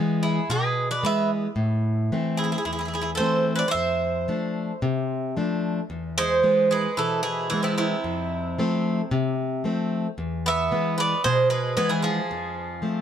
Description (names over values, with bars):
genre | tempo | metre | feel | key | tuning
greek folk, Greek bouzouki band | 112 BPM | 4/4 | straight | E phrygian dominant | A4 = 439 Hz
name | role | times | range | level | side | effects
picked plugged-in steel-string acoustic guitar | accompaniment | 0.0-13.0 s | E2 to D4 | -25 LUFS | left 2 dB | none
Greek bouzouki | melody | 0.2-13.0 s | E4 to E5 | -25 LUFS | right 3 dB | none
Greek bouzouki | second line | 0.2-13.0 s | C3 to C5 | -28 LUFS | right 1 dB | none
room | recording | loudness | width
light reverb | dark, warm production | -22 LUFS | side -9 dB against mid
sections
0.0-5.9 A section; 5.9-13.0 B section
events
speeding up 0.0-13.0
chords
0.0 E; 1.6 Am; 3.7 F6; 5.9 E; 8.0 F; 10.2 E; 12.3 F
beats
0.49 1.03 | 1.58 2.12 2.66 3.20 | 3.74 4.28 4.82 5.36 | 5.89 6.43 6.97 7.50 | 8.04 8.57 9.10 9.63 | 10.17 10.70 11.23 11.76 | 12.29 12.82